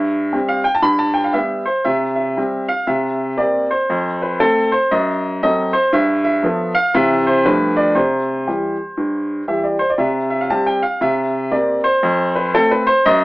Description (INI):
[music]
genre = jazz, stride piano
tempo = 118 BPM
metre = 4/4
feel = swing 63% on 8ths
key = C major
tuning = A4 = 445 Hz
[part]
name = clear upright piano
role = solo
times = 0.0-13.2 s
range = F2 to B5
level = -15 LUFS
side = equal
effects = none
[sound]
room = light reverb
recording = band playing live in one room, AM radio sound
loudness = -15 LUFS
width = side -21 dB against mid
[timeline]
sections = 0.0-10.0 A section; 10.0-13.2 A section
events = none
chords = 0.0 C/G; 0.8 G; 1.9 C; 2.9 C7; 3.9 F; 4.9 F#dim7; 5.9 G13; 6.9 C; 7.5 G9; 8.0 C; 10.0 C5; 11.0 C7; 12.0 F